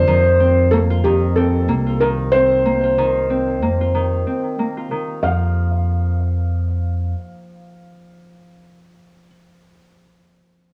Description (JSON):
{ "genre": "folktronica", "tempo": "93 BPM", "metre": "4/4", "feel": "swing 56% on 16ths", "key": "unclear", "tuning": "A4 = 440 Hz", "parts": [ { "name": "felt-muted upright piano", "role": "melody", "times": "0.0-9.3 s", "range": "G4 to F5", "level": "-20 LUFS", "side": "equal", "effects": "cassette tape, plate reverb, analog delay" }, { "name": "Celtic harp", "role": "arpeggios", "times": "0.0-9.1 s", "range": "D3 to F4", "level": "-25 LUFS", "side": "equal", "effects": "low-pass filter, analog delay" }, { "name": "fingered electric bass", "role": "bass", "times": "0.0-7.1 s", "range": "C2 to F2", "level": "-21 LUFS", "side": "equal", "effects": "none" } ], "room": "moderate booth ambience, RT60 0.2 s", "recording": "home recording on cassette, small room ambience", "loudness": "-18 LUFS", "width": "mono", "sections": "0.1-5.2 A section; 5.2-7.8 B section", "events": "none", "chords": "0.1 F7sus4; 5.2 N.C." }